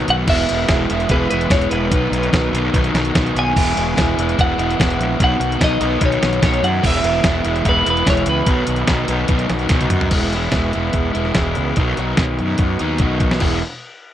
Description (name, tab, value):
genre	indie rock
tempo	146 BPM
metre	4/4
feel	straight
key	E major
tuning	A4 = 440 Hz
part	crunchy overdriven guitar	riff	0.0-13.6 s	B2 to E4	-20 LUFS	equal	none
part	fuzz fingered electric bass	bass	0.0-13.6 s	E1 to F#2	-21 LUFS	equal	overdrive
part	twelve-string electric guitar	melody	0.1-9.5 s	B4 to G#5	-21 LUFS	equal	analog delay
part	clean 12-bit digital drum machine	drums	0.1-13.5 s	crash cymbal, hi-hat, kick drum, snare drum, toms	-19 LUFS	equal	none
room	light reverb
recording	worn, warbling old tape, cassette tape, warbly pitch drift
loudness	-15 LUFS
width	side -11 dB against mid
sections	0.0-10.1 A section; 10.1-13.4 B section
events	drum fill 9.7-10.1, 13.0-13.4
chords	0.3 E; 1.9 B; 3.6 Eadd9; 5.2 Badd9; 6.8 E; 8.5 B; 10.1 E; 11.8 B; 13.4 E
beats	| 0.28 0.69 1.10 1.51 | 1.92 2.33 2.74 3.15 | 3.56 3.97 4.38 4.79 | 5.20 5.61 6.02 6.43 | 6.84 7.25 7.66 8.07 | 8.48 8.89 9.30 9.71 | 10.12 10.53 10.95 11.36 | 11.77 12.19 12.60 13.01 | 13.43